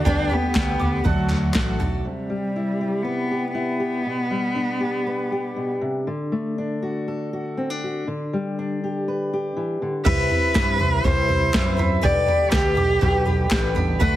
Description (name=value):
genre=indie folk with a building arrangement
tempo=120 BPM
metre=4/4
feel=straight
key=G major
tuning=A4 = 444 Hz
part: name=warm cello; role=melody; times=0.0-5.8, 10.0-14.2 s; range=F#3 to D5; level=-23 LUFS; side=equal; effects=none
part: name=picked twelve-string acoustic guitar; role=accompaniment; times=0.0-2.1, 10.1-14.2 s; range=C3 to B4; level=-29 LUFS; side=left 6 dB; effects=none
part: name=warm upright piano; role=accompaniment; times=0.0-2.1, 10.0-14.2 s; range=B1 to E5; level=-33 LUFS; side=right 5 dB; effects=none
part: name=hand-pumped harmonium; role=sustained chords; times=0.0-2.0, 10.1-14.2 s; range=C3 to G4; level=-33 LUFS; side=right 3 dB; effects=none
part: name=bowl-back mandolin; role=arpeggios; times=0.0-2.0, 10.0-14.2 s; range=E5 to D6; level=-30 LUFS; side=right 4 dB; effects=none
part: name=fingered electric bass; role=bass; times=0.1-2.0, 10.1-14.2 s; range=A1 to G2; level=-25 LUFS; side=equal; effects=none
part: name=soft vintage rhythm box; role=drums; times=0.1-1.9, 10.1-14.1 s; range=crash cymbal, kick drum, snare drum, toms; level=-22 LUFS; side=equal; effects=none
part: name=group handclap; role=percussion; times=0.5-1.7, 10.6-13.6 s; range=none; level=-32 LUFS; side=left 2 dB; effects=none
part: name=fingerpicked steel-string acoustic guitar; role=accompaniment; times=2.0-12.0 s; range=B2 to B4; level=-25 LUFS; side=left 1 dB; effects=none
room=light reverb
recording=heavily compressed radio sound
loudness=-20 LUFS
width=side -14 dB against mid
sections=0.0-2.0 A section; 2.0-10.1 B section; 10.1-14.2 A section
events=none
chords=0.1 G/D; 1.0 D; 2.0 Cmaj7; 4.0 G/B; 6.1 D; 8.1 G/D; 10.1 Cmaj7; 12.0 G/B